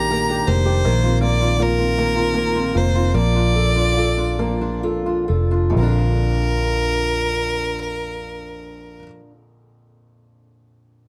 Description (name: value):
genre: six-eight pop ballad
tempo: 42-54 BPM (dotted quarters)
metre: 6/8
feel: straight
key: Bb major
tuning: A4 = 439 Hz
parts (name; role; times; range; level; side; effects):
- clear violin; melody; 0.0-9.0 s; Bb4 to Bb5; -25 LUFS; equal; none
- felt-muted upright piano; accompaniment; 0.0-11.1 s; Bb1 to Bb4; -27 LUFS; equal; none
- fingerpicked steel-string acoustic guitar; arpeggios; 0.0-9.4 s; Eb3 to G4; -28 LUFS; equal; none
- vintage muted fingered electric bass; bass; 0.0-9.0 s; F1 to Bb1; -23 LUFS; equal; none
room: little or no reverb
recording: dry, close 1970s-style studio recording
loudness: -19 LUFS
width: mono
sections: 0.0-5.8 A section; 5.8-8.6 B section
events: slowing down 0.8-5.8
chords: 0.0 F13sus4; 0.8 F7sus4/Bb; 3.1 Bbmaj7; 5.8 Bb